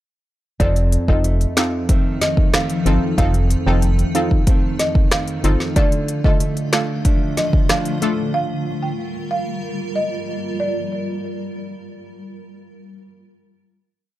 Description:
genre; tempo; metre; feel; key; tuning
dancehall; 93 BPM; 4/4; straight; unclear; A4 = 439 Hz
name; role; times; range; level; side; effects
folk marimba with medium mallets; melody; 0.6-10.7 s; D5 to G5; -25 LUFS; right 1 dB; tape echo
synth brass stab; accompaniment; 0.6-8.3 s; D3 to A4; -24 LUFS; left 1 dB; chorus
granular cloud pad; sustained chords; 1.6-10.9 s; D3 to Bb4; -27 LUFS; left 1 dB; built-in reverb, sidechain pumping
nylon-string guitar; arpeggios; 0.6-8.9 s; F2 to D4; -24 LUFS; right 2 dB; none
organ-like FM bass; bass; 0.6-5.6 s; F1 to G1; -17 LUFS; equal; none
afro-pop drum kit; drums; 0.6-8.2 s; finger snaps, hi-hat, kick drum, rim click, snare drum; -18 LUFS; equal; none
room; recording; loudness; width
digital ambience; dark, warm production; -16 LUFS; side -14 dB against mid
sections
0.6-10.9 chorus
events
none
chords
0.6 F7; 5.8 Dm; 8.3 Gm7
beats
| 0.60 1.25 1.89 2.54 | 3.18 3.83 4.47 5.12 | 5.76 6.41 7.05 7.70 | 8.34 8.99 9.63 10.28

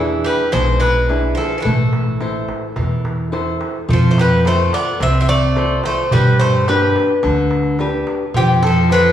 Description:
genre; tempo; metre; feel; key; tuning
greek folk, Greek bouzouki band; 108 BPM; 4/4; straight; unclear; A4 = 437 Hz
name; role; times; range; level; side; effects
Greek bouzouki; melody; 0.0-9.1 s; G4 to E5; -18 LUFS; left 2 dB; none
Greek bouzouki; second line; 0.0-9.1 s; C3 to C4; -24 LUFS; right 3 dB; none
nylon-string guitar; accompaniment; 0.0-9.1 s; B2 to C5; -20 LUFS; equal; none
upright bass; bass; 0.0-9.1 s; A1 to G2; -21 LUFS; equal; none
darbuka; percussion; 0.5-9.0 s; none; -20 LUFS; right 1 dB; none
room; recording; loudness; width
wet recital hall reverb, RT60 1.4 s; recorded in a church or concert hall, studio reverb; -14 LUFS; side -10 dB against mid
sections
0.0-3.9 A section; 3.9-9.1 B section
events
none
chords
0.0 E7; 1.7 Am; 3.9 F; 6.1 G; 8.3 F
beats
0.54 1.10 | 1.66 2.22 2.77 3.33 | 3.89 4.45 5.01 5.56 | 6.12 6.68 7.23 7.79 | 8.35 8.90

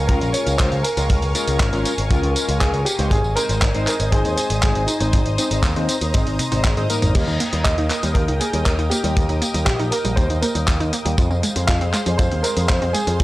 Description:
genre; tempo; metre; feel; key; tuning
italo disco; 119 BPM; 4/4; straight; Ab major; A4 = 441 Hz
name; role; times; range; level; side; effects
dark baby grand piano; melody; 0.0-13.2 s; Eb4 to F5; -25 LUFS; equal; analog delay
lush unison pad; sustained chords; 0.0-13.2 s; Ab4 to Eb6; -28 LUFS; equal; chorus, phaser
picked electric bass with an envelope filter; bass; 0.0-13.2 s; Ab1 to F2; -22 LUFS; equal; none
chorused polysynth; stabs; 0.1-7.4 s; G3 to C5; -25 LUFS; left 2 dB; none
dusty soul sampler-style drum kit; drums; 0.1-13.2 s; crash cymbal, handclaps, hi-hat, tambourine, toms; -24 LUFS; equal; small room ambience
kick drum; drums; 0.1-13.2 s; none; -20 LUFS; equal; small room ambience
wide unison pluck; arpeggios; 7.1-13.2 s; F3 to G4; -26 LUFS; right 1 dB; cassette tape, analog delay
room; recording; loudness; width
studio ambience; dry, gritty hardware recording, cassette tape; -17 LUFS; side -17 dB against mid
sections
0.0-13.2 A section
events
drum fill 6.4-7.1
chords
0.0 Db6; 3.1 Ab; 7.1 Eb; 11.2 Fm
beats
0.09 0.59 | 1.10 1.60 2.10 2.61 | 3.11 3.62 4.12 4.63 | 5.13 5.63 6.14 6.64 | 7.15 7.65 8.16 8.66 | 9.16 9.67 10.17 10.68 | 11.18 11.69 12.19 12.69 | 13.20

